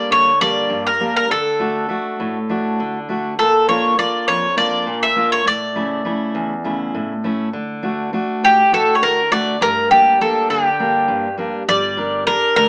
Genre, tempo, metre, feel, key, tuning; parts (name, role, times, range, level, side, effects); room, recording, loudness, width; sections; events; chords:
greek folk, Greek bouzouki band; 202 BPM (eighths); 7/8; straight; G dorian sharp4; A4 = 440 Hz
Greek bouzouki; melody; 0.0-12.7 s; G4 to E5; -15 LUFS; equal
fingerpicked steel-string acoustic guitar; accompaniment; 0.0-12.7 s; E2 to Bb4; -21 LUFS; equal
upright bass; bass; 11.7-12.7 s; G1 to D2; -28 LUFS; equal
moderate studio reverb, RT60 0.6 s; small speaker sound; -15 LUFS; side -40 dB against mid
0.0-11.7 A section; 11.7-12.7 B section
0.0 Gm; 1.3 D; 3.4 Bb; 5.5 A; 7.5 D; 9.6 Gm